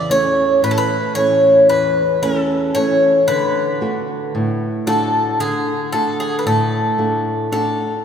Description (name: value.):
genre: greek folk, Greek bouzouki band.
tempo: 113 BPM (eighths).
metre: 9/8.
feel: straight.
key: unclear.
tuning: A4 = 439 Hz.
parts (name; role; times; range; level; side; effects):
Greek bouzouki; melody; 0.0-8.0 s; G#4 to C#5; -16 LUFS; equal; none.
nylon-string guitar; accompaniment; 0.0-7.9 s; E2 to F#4; -19 LUFS; equal; none.
room: wet church reverb, RT60 2.9 s.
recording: recorded in a church or concert hall.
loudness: -14 LUFS.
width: side -8 dB against mid.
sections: 0.0-8.0 A section.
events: none.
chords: 0.0 A; 3.3 D.